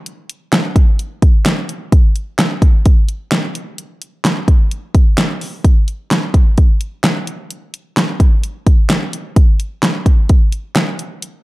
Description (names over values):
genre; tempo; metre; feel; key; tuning
pop; 129 BPM; 4/4; straight; none; none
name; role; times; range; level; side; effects
pop drum kit; drums; 0.1-11.3 s; handclaps, hi-hat, kick drum, snare drum; -11 LUFS; equal; none
room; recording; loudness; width
light reverb; dark, warm production; -12 LUFS; side -20 dB against mid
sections
0.0-11.4 A section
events
none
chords
none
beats
| 0.06 0.53 0.99 1.46 | 1.92 2.39 2.85 3.32 | 3.78 4.25 4.71 5.18 | 5.64 6.11 6.57 7.04 | 7.50 7.97 8.44 8.90 | 9.37 9.83 10.29 10.76 | 11.22